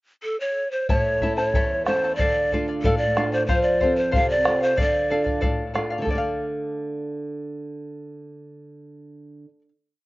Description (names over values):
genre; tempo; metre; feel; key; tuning
andean folk, Andean ensemble; 93 BPM; 2/4; straight; D minor; A4 = 440 Hz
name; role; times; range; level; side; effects
breathy large pan pipes; melody; 0.2-5.4 s; A4 to F5; -22 LUFS; right 1 dB; slapback echo
charango; accompaniment; 0.9-9.7 s; E4 to A5; -28 LUFS; left 2 dB; slapback echo
flamenco guitar; accompaniment; 0.9-9.6 s; E2 to F5; -27 LUFS; equal; slapback echo
bombo; percussion; 0.9-6.4 s; none; -26 LUFS; equal; none
room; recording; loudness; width
light reverb; recorded outdoors, with no room sound, nothing above 7.6 kHz; -20 LUFS; side -19 dB against mid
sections
0.0-0.9 pickup bar; 0.9-6.1 A section; 6.1-8.6 final chord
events
none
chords
0.0 N.C.; 0.9 A; 2.2 Dm; 3.5 F; 4.8 Dm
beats
0.24 | 0.90 1.55 | 2.19 2.84 | 3.49 4.14 | 4.78 5.43 | 6.07 6.72 | 7.36 8.00